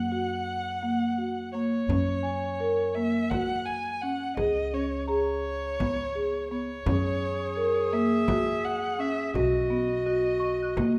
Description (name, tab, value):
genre	contemporary instrumental, chamber music in an uneven meter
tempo	169 BPM (eighths)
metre	7/8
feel	straight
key	unclear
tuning	A4 = 438 Hz
part	dark violin	melody	0.0-11.0 s	C#5 to G#5	-35 LUFS	equal	none
part	upright bass	bass	0.0-11.0 s	B1 to F#2	-38 LUFS	equal	none
part	marimba with medium mallets	arpeggios	0.1-11.0 s	A#3 to A#4	-31 LUFS	equal	none
part	frame drum	percussion	1.9-11.0 s	none	-36 LUFS	equal	none
part	celesta	texture	2.2-11.0 s	G#5 to F#6	-41 LUFS	equal	none
part	warm clarinet	second line	6.9-11.0 s	F#4 to G#4	-31 LUFS	equal	none
room	wet recital hall reverb, RT60 1.4 s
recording	none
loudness	-28 LUFS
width	mono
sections	0.0-1.9 A section; 1.9-11.0 B section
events	none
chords	0.0 F#; 4.4 C#5; 6.9 F#; 9.3 Bmaj7